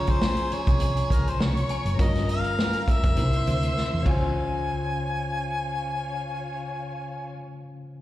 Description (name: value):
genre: lush 1970s-style soul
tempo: 101 BPM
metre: 4/4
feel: swing 54% on 16ths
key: Db major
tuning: A4 = 442 Hz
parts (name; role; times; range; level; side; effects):
- warm harmonica; melody; 0.0-7.3 s; Bb4 to Ab5; -30 LUFS; left 1 dB; slapback echo
- dark studio string section; second line; 0.0-7.3 s; F4 to Db6; -37 LUFS; left 2 dB; slapback echo
- mellow tine electric piano; accompaniment; 0.0-8.0 s; C3 to C5; -32 LUFS; left 2 dB; medium stereo tremolo, slapback echo
- glockenspiel with hard plastic mallets; texture; 0.0-7.3 s; Ab5 to Bb5; -42 LUFS; left 3 dB; none
- vintage drum kit; drums; 0.1-4.2 s; crash cymbal, hi-hat, kick drum, snare drum; -25 LUFS; equal; none
- hollow-body short-scale fingered electric bass; bass; 0.5-7.3 s; F1 to E2; -27 LUFS; equal; none
room: small room ambience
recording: live gig heard through the venue's PA, recital hall reverb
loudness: -23 LUFS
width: side -14 dB against mid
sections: 0.0-4.4 A section; 4.4-6.7 B section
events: drum fill 3.8-4.4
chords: 0.0 Dbmaj7; 2.0 Gm7b5; 3.2 C7; 4.1 Dbmaj7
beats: 0.22 0.81 1.40 | 1.99 2.58 3.17 3.77 | 4.36 4.95 5.54 6.13